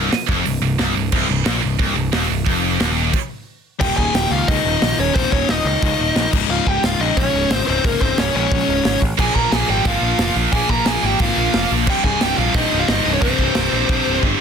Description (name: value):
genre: heavy metal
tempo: 178 BPM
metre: 4/4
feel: straight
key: C phrygian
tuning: A4 = 440 Hz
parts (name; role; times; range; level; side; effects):
- distorted electric guitar; riff; 0.0-14.4 s; C2 to Bb3; -22 LUFS; left 15 dB; overdrive
- heavy high-gain guitar; riff; 0.0-3.1, 9.2-14.4 s; C2 to Bb3; -21 LUFS; right 17 dB; distortion
- growling picked electric bass; bass; 0.0-14.3 s; C1 to Db2; -23 LUFS; equal; overdrive
- modern studio drum kit; drums; 0.1-14.3 s; crash cymbal, hi-hat, kick drum, snare drum; -22 LUFS; equal; none
- dark smooth lead guitar; melody; 3.8-14.2 s; Bb4 to Bb5; -21 LUFS; equal; overdrive, tape echo
- high-gain lead guitar; second line; 3.8-14.2 s; Bb3 to Bb4; -26 LUFS; right 4 dB; distortion
room: light reverb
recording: dense, heavily limited modern master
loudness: -15 LUFS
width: side -7 dB against mid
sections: 0.0-3.8 A section; 3.8-14.4 B section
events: stop 3.1-3.8; drum fill 14.2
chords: 0.0 Cm; 3.8 Eb5; 6.3 Db5; 9.2 Bb5; 11.9 C5